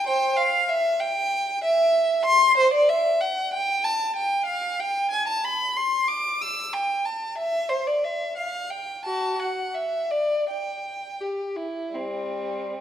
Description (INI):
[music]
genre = classical, baroque-style suite movement for unaccompanied violin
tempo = 79-98 BPM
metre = 4/4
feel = rubato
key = unclear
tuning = A4 = 445 Hz
[part]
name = rich violin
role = solo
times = 0.0-12.8 s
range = G3 to E6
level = -22 LUFS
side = equal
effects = none
[sound]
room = wet recital hall reverb, RT60 1.5 s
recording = recorded in a church or concert hall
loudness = -22 LUFS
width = side -10 dB against mid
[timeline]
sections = 0.0-12.8 A section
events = none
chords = none